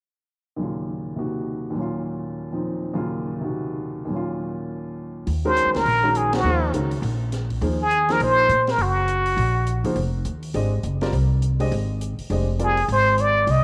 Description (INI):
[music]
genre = modal jazz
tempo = 205 BPM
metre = 4/4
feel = swing 61% on 8ths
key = Eb dorian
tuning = A4 = 440 Hz
[part]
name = warm baby grand piano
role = accompaniment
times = 0.6-12.8 s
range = Eb2 to Eb5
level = -30 LUFS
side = equal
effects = none
[part]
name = upright bass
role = bass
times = 5.3-13.6 s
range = F1 to Bb2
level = -26 LUFS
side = equal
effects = none
[part]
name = open jazz drum kit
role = drums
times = 5.3-13.6 s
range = hi-hat, kick drum, ride cymbal, snare drum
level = -38 LUFS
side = equal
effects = none
[part]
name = trumpet with plunger mute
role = melody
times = 5.5-9.9, 12.6-13.6 s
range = Gb4 to Eb5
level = -22 LUFS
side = equal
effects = none
[sound]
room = moderate echo chamber reverb, RT60 2.0 s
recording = none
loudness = -23 LUFS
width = mono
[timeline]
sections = 0.6-5.3 A section; 5.3-13.6 B section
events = band accent 6.3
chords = 0.6 Ebm9; 10.0 Fm9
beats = | 0.58 0.87 1.17 1.46 | 1.75 2.05 2.34 2.63 | 2.93 3.22 3.51 3.81 | 4.10 4.39 4.69 4.98 | 5.27 5.57 5.86 6.15 | 6.44 6.74 7.03 7.32 | 7.62 7.91 8.20 8.49 | 8.79 9.08 9.37 9.66 | 9.96 10.25 10.54 10.84 | 11.13 11.42 11.71 12.01 | 12.30 12.59 12.88 13.18 | 13.47